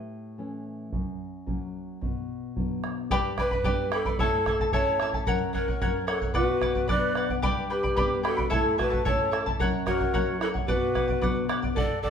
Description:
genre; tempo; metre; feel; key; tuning
andean folk, Andean ensemble; 111 BPM; 2/4; straight; B minor; A4 = 440 Hz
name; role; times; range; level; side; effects
charango; accompaniment; 0.0-0.6, 3.1-12.1 s; E4 to B5; -29 LUFS; left 3 dB; none
nylon-string guitar; accompaniment; 0.0-11.7 s; F#2 to D4; -33 LUFS; left 3 dB; none
bombo; percussion; 0.9-12.1 s; none; -30 LUFS; right 1 dB; none
breathy large pan pipes; melody; 3.4-12.1 s; A4 to D5; -30 LUFS; right 1 dB; none
breathy mellow large quena; second line; 6.3-12.1 s; E4 to B4; -30 LUFS; equal; none
room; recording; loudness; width
wet studio reverb, RT60 0.8 s; band playing live in one room; -24 LUFS; side -7 dB against mid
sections
0.0-3.1 A section; 3.1-11.8 B section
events
charango solo 0.0-3.1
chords
0.0 A; 0.9 F#; 2.0 Bm; 3.1 G; 4.2 A; 5.3 F#; 6.4 Bm; 7.4 G; 8.5 A; 9.6 F#; 10.7 Bm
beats
0.38 | 0.93 1.48 | 2.02 2.56 | 3.11 3.65 | 4.20 4.74 | 5.28 5.82 | 6.36 6.90 | 7.44 7.98 | 8.52 9.06 | 9.60 10.14 | 10.68 11.22 | 11.75

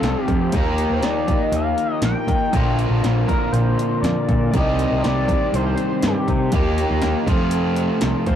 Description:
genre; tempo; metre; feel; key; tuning
psychedelic rock; 120 BPM; 4/4; straight; unclear; A4 = 440 Hz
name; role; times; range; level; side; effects
overdriven synth lead; melody; 0.0-8.4 s; G4 to G5; -25 LUFS; left 2 dB; distortion, chorus
combo organ; sustained chords; 0.0-8.4 s; D3 to C5; -31 LUFS; right 2 dB; none
crunchy overdriven guitar; riff; 0.0-8.4 s; F2 to G4; -22 LUFS; left 1 dB; none
fuzz picked electric bass; bass; 0.0-8.4 s; Bb1 to F3; -22 LUFS; equal; overdrive
punchy analog drum machine; drums; 0.0-8.4 s; hi-hat, kick drum, snare drum; -22 LUFS; equal; overdrive
room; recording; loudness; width
moderate small room reverb, RT60 0.5 s; rough rehearsal-room recording, warm saturation; -17 LUFS; side -10 dB against mid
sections
0.0-8.4 A section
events
analog synth lead solo 0.0-8.4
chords
0.0 F; 0.5 Ebadd9; 2.5 Bb; 4.5 Cm; 6.5 Ebadd9; 7.3 F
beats
0.03 | 0.53 1.03 1.54 2.04 | 2.54 3.04 3.54 4.04 | 4.54 5.03 5.53 6.03 | 6.53 7.02 7.52 8.02

